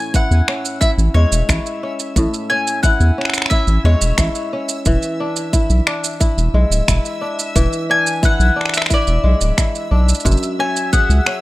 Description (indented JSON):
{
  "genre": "folktronica",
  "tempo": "89 BPM",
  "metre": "4/4",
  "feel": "straight",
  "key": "unclear",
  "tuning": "A4 = 439 Hz",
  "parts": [
    { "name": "mandolin", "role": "melody", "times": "0.0-11.4 s", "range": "C#5 to G#5", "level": "-20 LUFS", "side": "left 2 dB", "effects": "digital delay" },
    { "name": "kora", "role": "arpeggios", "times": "0.0-11.4 s", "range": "F#2 to G#4", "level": "-22 LUFS", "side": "left 1 dB", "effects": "digital delay" },
    { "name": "backwards swelling texture", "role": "texture", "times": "0.6-11.4 s", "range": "E5 to E6", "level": "-32 LUFS", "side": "equal", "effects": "built-in reverb" },
    { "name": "electronic kick drum", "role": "drums", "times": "0.1-11.1 s", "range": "none", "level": "-16 LUFS", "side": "equal", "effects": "none" },
    { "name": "electronic shaker and finger snaps", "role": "drums", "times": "0.1-11.4 s", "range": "none", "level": "-21 LUFS", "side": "right 2 dB", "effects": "none" },
    { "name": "round analog bass", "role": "bass", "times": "0.3-11.2 s", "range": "D1 to E2", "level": "-14 LUFS", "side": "equal", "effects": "none" }
  ],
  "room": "little or no reverb",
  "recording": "none",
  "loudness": "-14 LUFS",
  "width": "side -18 dB against mid",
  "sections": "0.0-11.4 A section",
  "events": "none",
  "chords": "0.0 Amaj7; 4.9 E7; 10.3 F#7sus2"
}